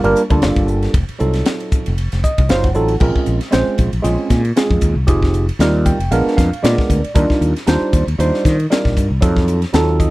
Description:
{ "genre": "electric jazz fusion", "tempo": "116 BPM", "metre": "4/4", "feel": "swing 56% on 16ths", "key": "unclear", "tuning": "A4 = 440 Hz", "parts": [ { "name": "tine electric piano", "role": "accompaniment", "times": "0.0-10.1 s", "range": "Gb3 to G5", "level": "-18 LUFS", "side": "right 2 dB", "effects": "phaser" }, { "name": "mellow fretless electric bass", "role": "bass", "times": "0.0-10.1 s", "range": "F1 to Eb3", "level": "-17 LUFS", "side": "equal", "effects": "none" }, { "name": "crisp fusion drum kit", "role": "drums", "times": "0.0-10.1 s", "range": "crash cymbal, hi-hat, kick drum, ride cymbal, snare drum", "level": "-18 LUFS", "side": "equal", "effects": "none" } ], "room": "little or no reverb", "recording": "none", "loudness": "-13 LUFS", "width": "side -19 dB against mid", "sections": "0.0-3.0 A section; 3.0-10.1 B section", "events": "tine electric piano fill 2.0-3.0, 5.6-7.2, 9.7-10.1", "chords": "0.0 Gm9; 0.9 F7b9; 3.0 Bbm9; 5.1 Fm9; 6.1 Bb7b9; 7.2 Ebmaj9; 9.2 F7b9" }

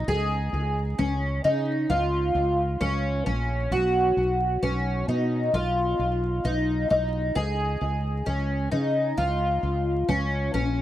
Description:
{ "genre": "dream pop", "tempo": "66 BPM", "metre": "4/4", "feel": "straight", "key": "unclear", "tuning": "A4 = 440 Hz", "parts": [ { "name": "fingerpicked twelve-string acoustic guitar", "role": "arpeggios", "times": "0.0-10.8 s", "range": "C#4 to G#4", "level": "-25 LUFS", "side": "equal", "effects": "analog chorus, tape echo" }, { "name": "mellow fretless electric bass", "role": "bass", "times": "0.0-10.8 s", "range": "A#1 to C#3", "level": "-27 LUFS", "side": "equal", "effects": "tube saturation, ensemble chorus" } ], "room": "moderate studio ambience, RT60 0.5 s", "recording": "dry, gritty hardware recording, vinyl crackle", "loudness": "-23 LUFS", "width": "side -13 dB against mid", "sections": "0.0-10.8 A section", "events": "none", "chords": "0.1 C#; 3.7 B; 7.4 C#" }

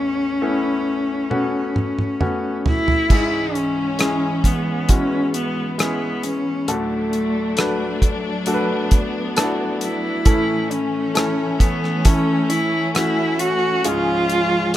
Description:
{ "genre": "pop ballad", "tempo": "67 BPM", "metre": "4/4", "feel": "straight", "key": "unclear", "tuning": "A4 = 440 Hz", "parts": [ { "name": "rich cello", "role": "melody", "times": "0.0-14.8 s", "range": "A3 to F#4", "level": "-21 LUFS", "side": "equal", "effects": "none" }, { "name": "clear baby grand piano", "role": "accompaniment", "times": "0.0-14.8 s", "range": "A1 to B4", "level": "-24 LUFS", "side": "left 1 dB", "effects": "none" }, { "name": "damped 70s drum kit", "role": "drums", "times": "1.3-14.8 s", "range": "crash cymbal, hi-hat, kick drum, rim click, toms", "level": "-18 LUFS", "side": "equal", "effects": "none" }, { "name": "warm studio string section", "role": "sustained chords", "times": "3.1-14.8 s", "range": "E3 to D4", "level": "-25 LUFS", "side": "equal", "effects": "none" } ], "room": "studio reverb", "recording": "rough home demo mix", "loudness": "-17 LUFS", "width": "side -13 dB against mid", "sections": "0.0-3.1 A section; 3.1-14.8 B section", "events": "drum fill 1.3-3.1", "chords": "0.0 Aadd9; 3.1 C#m; 6.7 D; 10.3 A; 13.8 C#" }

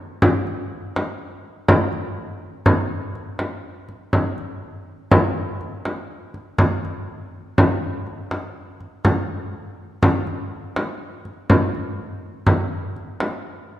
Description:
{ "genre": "contemporary instrumental, contemporary", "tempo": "122 BPM", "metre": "5/4", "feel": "straight", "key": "none", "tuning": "none", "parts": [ { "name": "frame drum", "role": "percussion", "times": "0.2-13.4 s", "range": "none", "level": "-19 LUFS", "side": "equal", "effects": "none" } ], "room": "wet concert hall reverb, RT60 2.0 s", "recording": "dark, warm production", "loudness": "-20 LUFS", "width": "side -13 dB against mid", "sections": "0.0-11.5 A section; 11.5-13.8 B section", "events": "none", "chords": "none" }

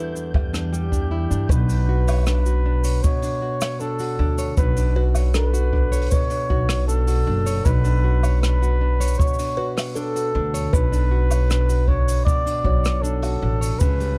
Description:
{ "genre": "folktronica", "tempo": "78 BPM", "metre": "4/4", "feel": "straight", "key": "B minor", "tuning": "A4 = 441 Hz", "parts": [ { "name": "music box", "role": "second line", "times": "0.0-13.0 s", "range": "A4 to C#5", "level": "-36 LUFS", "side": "equal", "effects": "tape echo" }, { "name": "nylon-string guitar", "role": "arpeggios", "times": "0.0-14.2 s", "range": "E2 to C#5", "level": "-30 LUFS", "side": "equal", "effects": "vintage 12-bit sampler grit" }, { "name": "flickering grainy texture", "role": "texture", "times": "0.0-1.5 s", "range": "G6", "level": "-46 LUFS", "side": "equal", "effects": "built-in reverb" }, { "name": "jazz brush drum kit", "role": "drums", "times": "0.2-14.2 s", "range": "cabasa, hi-hat, rim click, woodblock", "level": "-34 LUFS", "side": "equal", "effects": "none" }, { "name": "upright bass", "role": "bass", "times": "0.3-14.2 s", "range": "F#1 to G2", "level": "-22 LUFS", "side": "equal", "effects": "none" }, { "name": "kick drum", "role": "drums", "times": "0.3-14.0 s", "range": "none", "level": "-24 LUFS", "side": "equal", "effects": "none" }, { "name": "dark flugelhorn", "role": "melody", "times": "0.7-14.2 s", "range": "G4 to D5", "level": "-29 LUFS", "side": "equal", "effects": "tape echo" } ], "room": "studio reverb", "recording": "dark, warm production", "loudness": "-21 LUFS", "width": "mono", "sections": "0.0-1.5 A section; 1.5-14.2 B section", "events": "none", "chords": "0.0 Em7; 1.5 Bmadd9" }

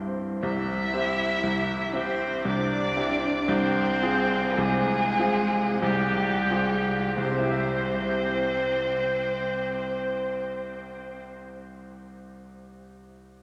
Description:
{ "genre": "classical, slow romantic movement for piano trio", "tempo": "42-60 BPM", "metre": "3/4", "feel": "rubato", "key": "C major", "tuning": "A4 = 440 Hz", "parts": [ { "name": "clear grand piano", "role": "accompaniment", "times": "0.0-13.4 s", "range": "C2 to E5", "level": "-30 LUFS", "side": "equal", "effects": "none" }, { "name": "rich violin", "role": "melody", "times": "0.4-11.2 s", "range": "G4 to E5", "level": "-30 LUFS", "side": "equal", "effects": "none" }, { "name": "rich cello", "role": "second line", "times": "0.4-11.2 s", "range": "G3 to E4", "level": "-34 LUFS", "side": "equal", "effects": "none" } ], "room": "wet cathedral reverb, RT60 4.9 s", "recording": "none", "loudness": "-26 LUFS", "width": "mono", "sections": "0.4-7.2 A section; 7.2-11.1 B section", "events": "slowing down 0.0-7.2", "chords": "0.4 C; 3.5 Fm/C; 7.2 C" }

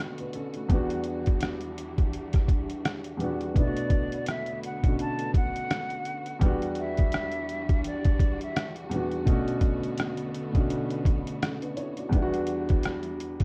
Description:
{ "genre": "lo-fi hip hop", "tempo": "84 BPM", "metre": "4/4", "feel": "swing 58% on 16ths", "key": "B minor", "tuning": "A4 = 439 Hz", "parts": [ { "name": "felt-muted upright piano", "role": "accompaniment", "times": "0.0-13.4 s", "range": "E2 to D5", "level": "-33 LUFS", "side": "equal", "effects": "cassette tape, low-pass filter" }, { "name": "warm studio string section", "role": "sustained chords", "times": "0.0-13.4 s", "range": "D3 to F#4", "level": "-41 LUFS", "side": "equal", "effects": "low-pass filter" }, { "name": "trip hop sampler-style drum kit", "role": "drums", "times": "0.2-13.4 s", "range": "hi-hat, kick drum, rim click", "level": "-28 LUFS", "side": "equal", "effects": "none" }, { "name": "breathy hollow jazz flute", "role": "melody", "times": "3.6-8.7 s", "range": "D5 to A5", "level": "-37 LUFS", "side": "equal", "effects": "low-pass filter" } ], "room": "light reverb", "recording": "dark, warm production", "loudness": "-28 LUFS", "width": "mono", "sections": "0.0-13.4 A section", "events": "none", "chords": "0.0 Bm7; 0.7 Em9; 3.6 Bm7; 6.4 Em9; 9.3 Bm7; 12.1 Em9" }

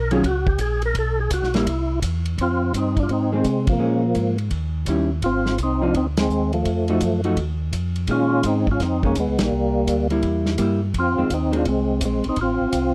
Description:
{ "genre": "soul jazz organ trio", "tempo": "168 BPM", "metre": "4/4", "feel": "swing 64% on 8ths", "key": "unclear", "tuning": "A4 = 440 Hz", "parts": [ { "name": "percussive tonewheel organ", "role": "melody", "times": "0.0-12.9 s", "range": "F3 to Bb4", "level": "-24 LUFS", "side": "equal", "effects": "slow rotary speaker, overdrive, chorus vibrato" }, { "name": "mellow tonewheel organ", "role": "bass", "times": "0.0-12.9 s", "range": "Ab1 to C3", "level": "-26 LUFS", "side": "equal", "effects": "slow rotary speaker" }, { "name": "vintage hollow-body jazz guitar", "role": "accompaniment", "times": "0.1-11.6 s", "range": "Eb3 to Gb4", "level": "-25 LUFS", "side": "equal", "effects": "none" }, { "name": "warm soul drum kit", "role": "drums", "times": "0.1-12.8 s", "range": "hi-hat, kick drum, ride cymbal, snare drum", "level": "-28 LUFS", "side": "equal", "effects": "none" } ], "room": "small room reverb", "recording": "dry, close 1970s-style studio recording", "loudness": "-21 LUFS", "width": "mono", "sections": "0.0-2.4 A section; 2.4-12.9 B section", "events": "tonewheel organ solo 0.0-2.4; band accent 3.6, 6.1, 9.3", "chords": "0.0 Ebm7; 1.0 Bsus2; 1.7 C; 2.4 Fm7; 3.8 Bbm7; 4.5 Eb7b9; 5.2 Ab6; 6.7 F7b9; 8.1 Bbm11; 9.5 C7; 10.9 Fm7; 12.4 Dm7/A (rootless)" }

